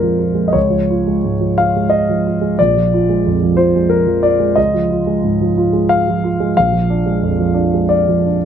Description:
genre	neoclassical minimalist piano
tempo	90 BPM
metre	3/4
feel	rubato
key	Db major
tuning	A4 = 440 Hz
part	dark concert grand piano	solo	0.0-8.4 s	Bb1 to F5	-12 LUFS	equal	none
room	light reverb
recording	close, detailed microphones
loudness	-12 LUFS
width	side -8 dB against mid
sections	0.0-8.4 A section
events	none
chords	0.0 Bb7; 0.6 Db; 2.6 Bb7; 4.6 Db; 6.6 Bb7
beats	| 0.56 1.24 1.91 | 2.58 3.25 3.91 | 4.57 5.24 5.90 | 6.57 7.23 7.92

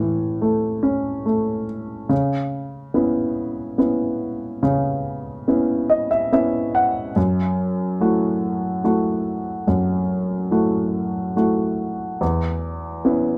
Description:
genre	folk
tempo	71 BPM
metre	3/4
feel	straight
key	C# minor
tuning	A4 = 440 Hz
part	dark baby grand piano	solo	0.0-13.4 s	E2 to F#5	-22 LUFS	equal	none
room	light reverb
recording	close, detailed microphones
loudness	-22 LUFS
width	mono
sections	0.0-2.1 A section; 2.1-13.4 B section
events	none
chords	0.0 A; 2.1 C#m7; 7.2 F#m7; 12.2 C#m7/E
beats	0.42 1.26 | 2.11 2.96 3.80 | 4.64 5.48 6.32 | 7.16 8.00 8.84 | 9.68 10.52 11.37 | 12.21 13.05

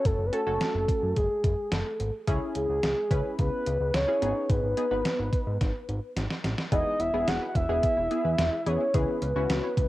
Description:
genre	synth-pop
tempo	108 BPM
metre	4/4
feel	straight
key	C# minor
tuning	A4 = 439 Hz
part	mellow horn-like synth lead	melody	0.0-9.9 s	G#4 to F#5	-28 LUFS	equal	chorus, tape echo
part	funky polysynth comp	accompaniment	0.0-9.7 s	B3 to B4	-33 LUFS	left 1 dB	chorus, cassette tape
part	fat analog bass	bass	0.1-9.9 s	E1 to G#2	-30 LUFS	equal	none
part	detuned 8-bit digital drum machine	drums	0.1-9.9 s	hi-hat, kick drum, snare drum	-28 LUFS	equal	overdrive, cassette tape
part	analog pluck	arpeggios	6.7-9.9 s	E3 to C#5	-39 LUFS	right 4 dB	chorus, cassette tape, tape echo
room	light reverb, digital ambience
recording	home recording on cassette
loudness	-25 LUFS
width	side -16 dB against mid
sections	0.0-6.7 A section; 6.7-9.9 B section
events	drum fill 5.6-6.7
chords	0.0 F#m; 2.3 C#m; 4.2 G#m; 6.7 E; 8.9 C#m7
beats	| 0.05 0.61 1.16 1.72 | 2.27 2.83 3.39 3.94 | 4.50 5.05 5.61 6.16 | 6.72 7.28 7.83 8.39 | 8.94 9.50

